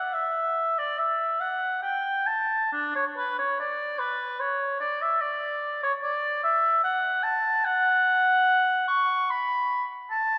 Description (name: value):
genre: classical, baroque-style fantasia for unaccompanied oboe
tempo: 73 BPM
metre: 3/4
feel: rubato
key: D major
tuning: A4 = 441 Hz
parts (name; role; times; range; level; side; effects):
- warm oboe; solo; 0.0-10.4 s; D4 to C#6; -26 LUFS; equal; none
room: wet concert hall reverb, RT60 2.3 s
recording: none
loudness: -26 LUFS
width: mono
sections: 0.0-10.4 A section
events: none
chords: none